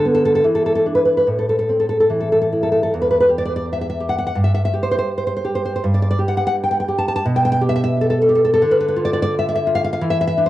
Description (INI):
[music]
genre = romantic piece for solo classical guitar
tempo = 68-88 BPM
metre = 2/4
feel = rubato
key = E minor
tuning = A4 = 440 Hz
[part]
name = nylon-string guitar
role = solo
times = 0.0-10.5 s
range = E2 to A5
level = -15 LUFS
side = equal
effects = cassette tape, tape echo
[sound]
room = wet studio reverb, RT60 0.5 s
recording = home recording on cassette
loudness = -15 LUFS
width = side -14 dB against mid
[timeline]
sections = 0.0-2.9 A section; 2.9-10.5 B section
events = none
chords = 0.4 E7sus4; 1.3 Am; 2.9 Em; 4.4 N.C.; 7.2 G/B; 8.7 Dm69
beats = 0.45 | 1.27 2.11 | 2.92 3.66 | 4.37 5.10 | 5.83 6.55 | 7.24 7.95 | 8.66 9.35 | 10.05